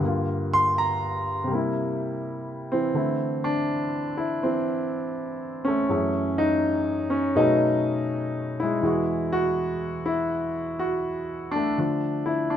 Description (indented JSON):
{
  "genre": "solo jazz",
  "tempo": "82 BPM",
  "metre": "4/4",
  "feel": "swing 67% on 8ths",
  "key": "unclear",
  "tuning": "A4 = 439 Hz",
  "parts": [
    { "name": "warm grand piano", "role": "solo", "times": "0.0-12.6 s", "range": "E2 to C6", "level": "-23 LUFS", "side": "equal", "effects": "none" }
  ],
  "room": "light reverb",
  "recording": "minimal, uncompressed stereo recording",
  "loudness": "-23 LUFS",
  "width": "side -9 dB against mid",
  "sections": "0.0-3.0 A section; 3.0-12.6 B section",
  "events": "grand piano solo 0.0-3.0",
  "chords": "0.0 Gm7; 1.5 C7; 3.0 C69; 5.9 F#m9; 7.4 B13; 8.8 Eadd9; 11.8 Dmadd9"
}